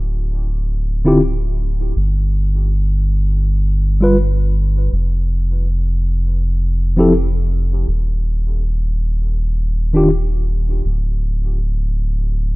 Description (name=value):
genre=trip hop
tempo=81 BPM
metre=4/4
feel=swing 56% on 16ths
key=unclear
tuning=A4 = 438 Hz
part: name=soft dub sub bass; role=bass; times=0.0-12.6 s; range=D1 to G1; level=-16 LUFS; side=equal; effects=none
part: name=mellow tine electric piano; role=accompaniment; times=1.0-10.1 s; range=D3 to B4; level=-17 LUFS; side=equal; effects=harmonic tremolo, tape echo
room=little or no reverb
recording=none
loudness=-15 LUFS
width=side -22 dB against mid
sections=0.0-12.6 A section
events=none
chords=none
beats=0.48 1.22 | 1.96 2.70 3.44 4.18 | 4.92 5.66 6.40 7.14 | 7.88 8.62 9.37 10.11 | 10.85 11.59 12.33